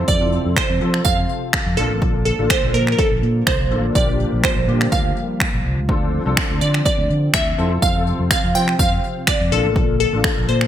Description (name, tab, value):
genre	dance-pop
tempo	124 BPM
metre	4/4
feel	straight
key	unclear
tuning	A4 = 440 Hz
part	glassy wavetable pluck	melody	0.0-10.7 s	A4 to G5	-21 LUFS	right 1 dB	chorus, ping-pong delay
part	warm grand piano	accompaniment	0.0-10.7 s	Bb3 to C5	-27 LUFS	left 4 dB	ensemble chorus
part	warm analog pad	sustained chords	0.0-10.7 s	C3 to A4	-28 LUFS	equal	chorus, sidechain pumping
part	fingered electric bass	bass	0.0-10.7 s	A1 to F3	-20 LUFS	equal	sidechain pumping
part	deep house drum kit	drums	0.1-10.7 s	finger snaps, kick drum	-20 LUFS	equal	overdrive, gated reverb
room	light reverb, digital ambience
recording	bright 1980s-style digital production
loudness	-16 LUFS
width	side -10 dB against mid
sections	0.0-10.7 A section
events	none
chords	0.0 Fmaj7; 1.8 Bbmaj7; 4.0 Gm7/Bb; 5.9 Dm7; 7.6 Fmaj7; 9.5 Bbmaj7